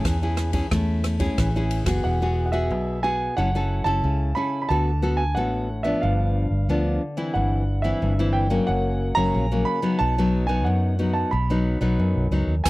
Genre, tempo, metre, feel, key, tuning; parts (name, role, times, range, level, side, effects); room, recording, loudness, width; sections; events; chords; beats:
samba and choro; 90 BPM; 4/4; straight; A4 = 440 Hz
warm grand piano; melody; 0.0-12.7 s; E5 to B5; -27 LUFS; right 3 dB
nylon-string guitar; accompaniment; 0.0-12.7 s; F#2 to A4; -24 LUFS; left 2 dB
vintage muted fingered electric bass; bass; 0.0-12.7 s; E1 to F#2; -24 LUFS; equal
open jazz drum kit; drums; 0.0-2.0, 12.7 s; hi-hat, kick drum, ride cymbal, rim click; -28 LUFS; equal
little or no reverb; dry, close 1970s-style studio recording; -20 LUFS; side -19 dB against mid
0.0-2.0 A section; 2.0-12.7 B section
0.0 Amaj7; 2.0 Eadd9; 3.4 F#m7; 4.7 D6; 6.0 G7; 7.4 C/G; 8.7 F#; 10.0 B
0.05 0.72 1.38 | 2.05 2.71 3.38 4.04 | 4.70 5.37 6.03 6.69 | 7.36 8.02 8.68 9.35 | 10.01 10.67 11.33 12.00 | 12.66